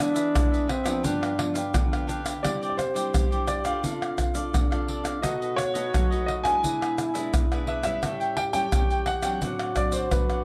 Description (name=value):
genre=samba and choro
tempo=86 BPM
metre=4/4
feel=straight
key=unclear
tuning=A4 = 440 Hz
part: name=breathy trombone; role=second line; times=0.0-10.4 s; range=C4 to G4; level=-32 LUFS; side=equal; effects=none
part: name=cavaquinho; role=accompaniment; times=0.0-10.4 s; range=D4 to G5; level=-36 LUFS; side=equal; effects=none
part: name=nylon-string guitar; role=accompaniment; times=0.0-10.4 s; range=G2 to F#4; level=-36 LUFS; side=equal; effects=none
part: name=tube shaker, pandeiro, tamborim and surdo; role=percussion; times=0.0-10.4 s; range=none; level=-29 LUFS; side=equal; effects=none
part: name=warm concert grand piano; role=melody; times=2.4-10.4 s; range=B4 to Ab5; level=-31 LUFS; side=equal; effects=none
room=moderate small room reverb, RT60 0.5 s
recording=none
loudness=-26 LUFS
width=mono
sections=0.0-2.4 A section; 2.4-10.4 B section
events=trombone solo 0.0-2.4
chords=0.0 E; 1.1 G7; 2.4 Cadd9; 3.8 F6/C; 5.2 B7; 6.6 E7/B; 8.0 A7; 9.4 D7/A